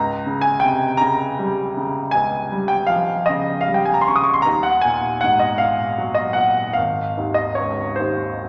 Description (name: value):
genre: classical, romantic nocturne for solo piano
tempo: 45-56 BPM (dotted quarters)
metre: 12/8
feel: rubato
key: Db major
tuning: A4 = 440 Hz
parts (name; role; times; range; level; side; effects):
- clear baby grand piano; solo; 0.0-8.5 s; Ab1 to Eb6; -20 LUFS; equal; none
room: wet recital hall reverb, RT60 1.3 s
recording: none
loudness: -19 LUFS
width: mono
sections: 0.0-8.5 A section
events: none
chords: 0.0 Dbmaj9#11; 4.5 Ebm; 6.8 Ab5